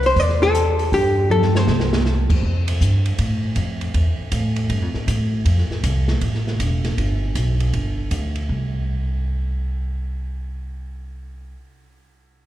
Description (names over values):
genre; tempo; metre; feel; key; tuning
jazz, small-group swing and bop; 158 BPM; 4/4; swing 65% on 8ths; unclear; A4 = 440 Hz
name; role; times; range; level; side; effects
hollow-body jazz guitar; melody; 0.0-2.3 s; G4 to D5; -19 LUFS; left 2 dB; none
upright bass; bass; 0.0-11.5 s; E1 to A2; -20 LUFS; equal; none
open jazz drum kit; drums; 0.0-8.4 s; crash cymbal, hi-hat, kick drum, ride cymbal, snare drum, toms; -25 LUFS; right 1 dB; none
room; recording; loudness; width
wet church reverb, RT60 3.4 s; recorded in a church or concert hall; -18 LUFS; side -13 dB against mid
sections
0.0-2.4 A section; 2.4-8.5 B section; 8.5-11.5 C section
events
drum fill 1.3-2.0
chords
0.0 C; 0.9 Gsus2; 1.7 N.C.; 2.4 Fsus2; 3.2 F; 3.9 Esus4; 4.7 Gsus2; 5.5 F5; 6.2 A5; 7.0 G; 7.7 G5; 8.5 N.C.